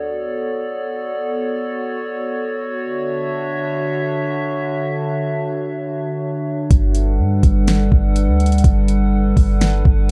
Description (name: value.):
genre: hip hop, atmospheric cloud-rap.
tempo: 124 BPM.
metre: 4/4.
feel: half-time.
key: D major.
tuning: A4 = 442 Hz.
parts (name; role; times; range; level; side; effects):
warbly tape-like pad; sustained chords; 0.0-10.1 s; D3 to F#5; -23 LUFS; equal; chorus, built-in reverb, sidechain pumping.
clean 808-style bass; bass; 6.7-10.1 s; G1 to G2; -18 LUFS; equal; none.
smooth R&B drum kit; drums; 6.7-10.0 s; hi-hat, kick drum, snare drum; -18 LUFS; equal; none.
room: little or no reverb.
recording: dark, warm production.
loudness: -19 LUFS.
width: mono.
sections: 0.0-10.1 A section.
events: none.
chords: 0.0 Bm7; 2.8 Dmaj7; 6.7 Gmaj7.